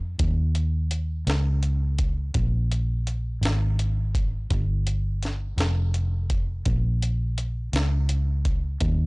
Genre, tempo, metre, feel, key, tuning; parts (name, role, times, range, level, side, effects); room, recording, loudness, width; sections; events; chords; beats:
slow blues; 56 BPM (dotted quarters); 12/8; straight; Eb mixolydian; A4 = 440 Hz
vintage muted fingered electric bass; bass; 0.0-9.1 s; F1 to F2; -24 LUFS; equal
jungle sampler-style drum kit; drums; 0.2-9.0 s; hi-hat, kick drum, snare drum; -27 LUFS; equal
little or no reverb; blown-out, overdriven recording, overdrive, nothing above 10.9 kHz; -23 LUFS; side -29 dB against mid
0.0-8.8 A section
| 0.19 1.26 2.34 3.42 | 4.50 5.57 6.65 7.73 | 8.81